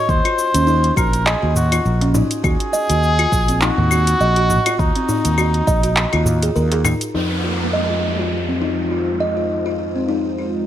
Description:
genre	organic downtempo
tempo	102 BPM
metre	4/4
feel	swing 56% on 16ths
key	unclear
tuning	A4 = 441 Hz
part	trumpet with cup mute	melody	0.0-6.9 s	Eb4 to Db5	-20 LUFS	equal	digital delay
part	buzzing kalimba	arpeggios	0.0-10.7 s	C4 to Eb5	-21 LUFS	equal	low-pass filter, digital delay
part	fretless electric bass	bass	0.1-10.7 s	Bb1 to F2	-20 LUFS	equal	tube saturation, analog chorus, sidechain pumping
part	deep house drum kit	drums	0.1-10.7 s	claves, handclaps, hi-hat, shaker	-22 LUFS	left 2 dB	overdrive, low-pass filter on perc, low-pass filter on snare, low-pass filter on hats
part	electronic kick drum	drums	0.1-5.8 s	none	-20 LUFS	equal	none
part	darbuka	percussion	0.1-7.0 s	none	-25 LUFS	right 1 dB	none
part	warm analog pad	sustained chords	7.7-10.7 s	Ab3 to C5	-25 LUFS	equal	chorus, sidechain pumping
part	downlifter	sound effects	7.1-10.7 s	none	-26 LUFS	right 1 dB	none
room	moderate lush hall reverb, RT60 1.6 s, digital ambience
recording	bright 1980s-style digital production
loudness	-15 LUFS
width	side -11 dB against mid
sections	0.0-7.1 A section; 7.1-10.7 B section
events	none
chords	0.0 Ebm; 2.4 Ab7(no3); 7.1 Fm7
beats	| 0.09 0.68 1.26 1.85 | 2.44 3.03 3.62 4.21 | 4.79 5.38 5.97 6.56 | 7.15 7.74 8.32 8.91 | 9.50 10.09

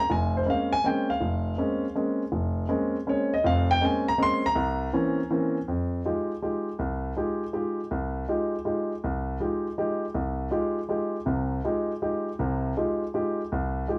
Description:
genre	jazz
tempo	161 BPM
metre	3/4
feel	swing 66% on 8ths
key	Bb dorian, F minor from 5.7 s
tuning	A4 = 442 Hz
part	warm grand piano	solo	0.0-14.0 s	F1 to C6	-27 LUFS	equal	none
room	moderate studio ambience, RT60 0.5 s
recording	band playing live in one room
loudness	-27 LUFS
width	mono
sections	0.0-5.7 A section; 5.7-14.0 B section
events	none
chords	0.0 Bbm9; 4.6 C7b9; 5.7 Fm9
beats	| 0.10 0.47 0.84 | 1.22 1.59 1.96 | 2.33 2.70 3.07 | 3.45 3.82 4.19 | 4.56 4.93 5.30 | 5.68 6.05 6.42 | 6.79 7.17 7.54 | 7.92 8.29 8.66 | 9.04 9.41 9.78 | 10.15 10.53 10.90 | 11.28 11.65 12.02 | 12.40 12.77 13.15 | 13.52 13.89

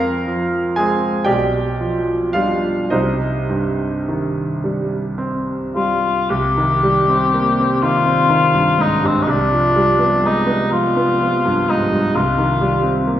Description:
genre	classical, romantic duo for cor anglais and grand piano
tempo	34-44 BPM (dotted quarters)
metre	6/8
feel	rubato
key	C minor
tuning	A4 = 440 Hz
part	bright concert grand piano	accompaniment	0.0-13.2 s	B1 to Bb5	-17 LUFS	right 1 dB	none
part	mellow cor anglais	melody	5.8-13.2 s	C4 to G4	-17 LUFS	left 4 dB	none
room	wet recital hall reverb, RT60 1.6 s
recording	recorded in a church or concert hall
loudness	-15 LUFS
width	side -11 dB against mid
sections	0.0-6.3 A section; 6.3-13.2 A section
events	none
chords	0.0 Fm; 1.3 G7/B; 2.9 Cm; 9.3 G7/C; 12.2 Cm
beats	1.29 | 2.93 4.64 | 6.30 7.83 | 9.29 10.72 | 12.15

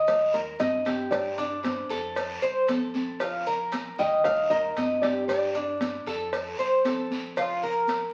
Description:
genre	latin, Cuban son and guajira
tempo	115 BPM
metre	4/4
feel	straight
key	Bb major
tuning	A4 = 441 Hz
part	Cuban tres	arpeggios	0.0-8.1 s	D4 to Eb5	-29 LUFS	equal	none
part	pure sine sub bass	bass	0.0-8.1 s	Bb1 to G2	-50 LUFS	equal	none
part	congas	percussion	0.1-8.1 s	none	-34 LUFS	equal	none
part	cowbell	percussion	0.1-8.1 s	none	-36 LUFS	equal	none
part	guiro	percussion	0.1-8.1 s	none	-44 LUFS	equal	none
part	maracas	percussion	0.1-8.1 s	none	-54 LUFS	equal	none
part	nylon-string guitar	melody	0.6-6.3 s	C5 to G5	-31 LUFS	equal	none
room	wet studio reverb, RT60 0.9 s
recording	very old 78 rpm record, vinyl crackle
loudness	-27 LUFS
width	mono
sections	0.0-8.1 A section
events	none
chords	0.1 Eb; 1.1 G5; 2.2 F; 3.2 Bb5; 4.2 Eb; 5.3 G5; 6.3 F; 7.4 Bb5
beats	0.08 0.60 | 1.12 1.64 2.16 2.68 | 3.20 3.72 4.24 4.76 | 5.29 5.81 6.33 6.85 | 7.37 7.89

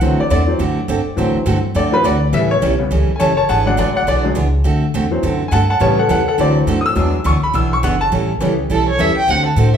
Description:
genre	country, western swing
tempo	207 BPM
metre	4/4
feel	swing 60% on 8ths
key	A mixolydian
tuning	A4 = 440 Hz
part	clear upright piano	accompaniment	0.0-9.1 s	C#3 to E6	-17 LUFS	left 2 dB	none
part	picked steel-string acoustic guitar	accompaniment	0.0-9.7 s	D3 to A4	-20 LUFS	right 3 dB	none
part	upright bass	bass	0.0-9.8 s	F#1 to A2	-18 LUFS	equal	none
part	dark fiddle	second line	8.7-9.7 s	A4 to G5	-16 LUFS	right 1 dB	none
room	wet large studio reverb, RT60 0.9 s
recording	band playing live in one room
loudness	-13 LUFS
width	side -8 dB against mid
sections	0.0-8.1 A section; 8.1-9.8 A section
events	upright piano solo 0.0-8.1; fiddle solo 8.1-9.8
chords	0.0 D9; 2.3 A9; 3.5 E9; 4.6 D9; 5.8 A9; 6.4 D9; 7.0 E9; 8.1 A9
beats	| 0.01 0.30 0.59 0.88 | 1.17 1.46 1.75 2.04 | 2.33 2.62 2.91 3.20 | 3.49 3.78 4.07 4.36 | 4.65 4.94 5.23 5.52 | 5.81 6.10 6.38 6.67 | 6.96 7.25 7.54 7.83 | 8.12 8.41 8.70 8.99 | 9.28 9.57

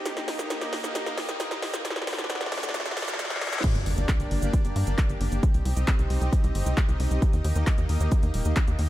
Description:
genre	uplifting trance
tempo	134 BPM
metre	4/4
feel	straight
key	G harmonic minor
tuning	A4 = 440 Hz
part	supersaw pad	sustained chords	0.0-8.9 s	A3 to Eb5	-33 LUFS	equal	vintage 12-bit sampler grit, sidechain pumping
part	riser, reverse cymbal and sub drop	sound effects	0.0-5.4 s	none	-35 LUFS	left 1 dB	none
part	punchy analog drum machine	drums	0.1-8.9 s	crash cymbal, handclaps, hi-hat, shaker, snare drum	-31 LUFS	equal	overdrive, sidechain pumping on hats, sidechain pumping on perc, sidechain pumping on cymbals
part	electronic kick drum	drums	3.6-8.7 s	none	-23 LUFS	equal	none
part	tight sequencer bass	bass	3.8-8.9 s	Eb1 to G2	-25 LUFS	equal	sidechain pumping
room	light reverb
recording	high-pass filter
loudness	-23 LUFS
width	side -14 dB against mid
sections	0.0-3.6 A section; 3.6-8.9 B section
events	build-up 0.0-3.6; drum fill 0.0-3.6; riser 0.0-3.6; reverse cymbal 2.7-3.6; drop 3.6-8.9; impact 3.6-5.4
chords	0.1 Eb; 1.8 D; 3.6 Gm; 5.4 Cm; 7.2 Eb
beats	| 0.06 0.50 0.95 1.40 | 1.85 2.29 2.74 3.19 | 3.64 4.09 4.53 4.98 | 5.43 5.88 6.33 6.77 | 7.22 7.67 8.12 8.56

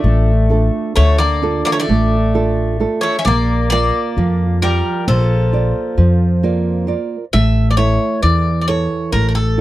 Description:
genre	greek folk, Greek bouzouki band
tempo	132 BPM (eighths)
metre	9/8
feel	straight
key	unclear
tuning	A4 = 441 Hz
part	Greek bouzouki	melody	0.0-9.6 s	A4 to E5	-21 LUFS	left 2 dB	none
part	Greek bouzouki	second line	0.0-6.8 s	F3 to C#4	-23 LUFS	left 2 dB	none
part	nylon-string guitar	accompaniment	0.0-9.6 s	D3 to E5	-19 LUFS	right 4 dB	none
part	upright bass	bass	0.0-9.6 s	A1 to F2	-15 LUFS	left 1 dB	none
room	little or no reverb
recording	dry, close 1970s-style studio recording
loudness	-13 LUFS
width	side -15 dB against mid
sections	0.0-7.3 A section; 7.3-9.6 B section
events	speeding up 0.0-9.6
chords	0.0 Dm; 3.2 Bb; 7.3 A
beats	0.03 0.49 0.95 1.41 1.87 2.33 2.79 | 3.25 3.70 4.16 4.62 5.07 5.52 5.97 6.43 6.88 | 7.33 7.78 8.23 8.68 9.12 9.57

